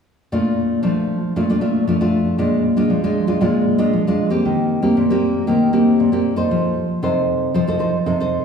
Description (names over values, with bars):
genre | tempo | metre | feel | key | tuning
samba | 116 BPM | 4/4 | straight | Bb major | A4 = 440 Hz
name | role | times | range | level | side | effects
nylon-string guitar | solo | 0.3-8.4 s | Bb2 to C5 | -15 LUFS | equal | none
room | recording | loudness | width
wet recital hall reverb, RT60 1.7 s | recorded in a church or concert hall | -16 LUFS | side -6 dB against mid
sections
0.3-8.4 A section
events
none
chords
0.3 Bbmaj7; 2.4 Bb7; 4.5 Eb6; 6.5 F7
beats
| 0.32 0.84 1.35 1.87 | 2.39 2.90 3.42 3.93 | 4.45 4.96 5.48 6.00 | 6.51 7.03 7.54 8.06